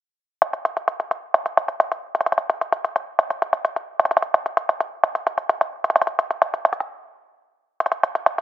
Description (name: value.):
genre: hip hop.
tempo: 130 BPM.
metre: 4/4.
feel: half-time.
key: none.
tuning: none.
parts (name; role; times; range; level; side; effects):
electronic hi-hat; drums; 0.4-8.4 s; none; -25 LUFS; left 1 dB; none.
room: little or no reverb.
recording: bright 1980s-style digital production, low-pass filter.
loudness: -20 LUFS.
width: side -15 dB against mid.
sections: 0.4-8.4 A section.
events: break 6.9-7.8.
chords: none.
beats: | 0.42 0.88 1.34 1.80 | 2.27 2.73 3.19 3.65 | 4.11 4.57 5.04 5.50 | 5.96 6.42 6.88 7.34 | 7.80 8.27.